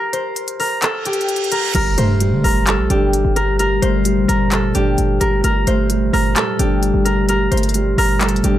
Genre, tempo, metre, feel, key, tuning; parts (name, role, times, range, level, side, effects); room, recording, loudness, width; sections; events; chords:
hip hop, trap; 130 BPM; 4/4; half-time; G minor; A4 = 440 Hz
concert harp; melody; 0.0-8.6 s; G4 to C5; -19 LUFS; left 1 dB
trap drum kit; drums; 0.1-8.5 s; crash cymbal, handclaps, hi-hat; -22 LUFS; left 1 dB
reverse cymbal and impact; sound effects; 1.0-3.6 s; -26 LUFS; right 1 dB
felt-muted upright piano; accompaniment; 1.7-8.6 s; G3 to G4; -22 LUFS; right 3 dB
warbly tape-like pad; sustained chords; 2.5-8.6 s; Bb2 to A3; -23 LUFS; left 1 dB; chorus, built-in reverb
hard-hitting 808-style bass; bass; 1.7-8.6 s; G1 to D3; -18 LUFS; equal
little or no reverb; -14 LUFS; side -12 dB against mid
0.0-1.7 A section; 1.7-8.6 B section
break 0.0-1.7; reverse cymbal 1.0-1.7; impact 1.7-3.6
0.0 Gmadd11; 1.7 Gmadd9